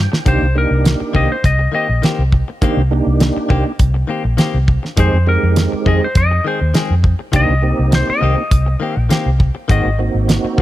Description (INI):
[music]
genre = straight-eighth soul blues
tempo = 102 BPM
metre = 4/4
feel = swing 54% on 16ths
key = C minor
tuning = A4 = 440 Hz
[part]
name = tonewheel organ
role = accompaniment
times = 0.0-10.6 s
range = Ab3 to G5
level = -21 LUFS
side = right 4 dB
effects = slow rotary speaker, chorus vibrato
[part]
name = vintage muted fingered electric bass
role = bass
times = 0.0-10.6 s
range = Ab1 to F2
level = -15 LUFS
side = equal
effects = none
[part]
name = direct-recorded clean electric guitar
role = stabs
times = 0.1-10.6 s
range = Eb3 to Ab4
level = -23 LUFS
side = left 4 dB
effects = none
[part]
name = damped 70s drum kit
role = drums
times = 0.1-10.6 s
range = hi-hat, kick drum, snare drum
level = -15 LUFS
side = equal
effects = none
[part]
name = clean lap steel guitar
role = melody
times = 0.3-10.0 s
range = Bb4 to G5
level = -20 LUFS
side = left 2 dB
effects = none
[sound]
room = little or no reverb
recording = none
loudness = -13 LUFS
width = side -14 dB against mid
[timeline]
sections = 0.3-10.6 A section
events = tonewheel organ fill 0.0; drum fill 0.0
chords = 0.3 Cm7; 5.0 Fm7; 7.3 Cm7; 9.7 Ab7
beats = | 0.26 0.85 1.44 2.03 | 2.62 3.21 3.80 4.39 | 4.98 5.57 6.16 6.75 | 7.33 7.92 8.51 9.10 | 9.69 10.28